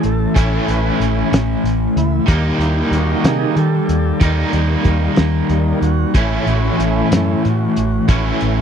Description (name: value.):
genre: psychedelic rock.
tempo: 62 BPM (dotted quarters).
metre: 6/8.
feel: straight.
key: A lydian.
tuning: A4 = 441 Hz.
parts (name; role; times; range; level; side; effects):
tonewheel organ; sustained chords; 0.0-8.6 s; D#3 to B4; -22 LUFS; right 4 dB; slow rotary speaker, overdrive.
crunchy overdriven guitar; riff; 0.0-8.6 s; A2 to E4; -18 LUFS; left 1 dB; tremolo.
vintage muted fingered electric bass; bass; 0.0-8.6 s; A1 to D#3; -18 LUFS; equal; none.
cloth-damped thuddy drum kit; drums; 0.0-8.6 s; hi-hat, kick drum, snare drum; -16 LUFS; equal; none.
room: little or no reverb.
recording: dry, close 1970s-style studio recording.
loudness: -14 LUFS.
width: side -8 dB against mid.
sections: 0.0-8.6 A section.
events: tonewheel organ solo 0.0-8.6.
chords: 0.0 A; 2.3 D#; 6.2 A.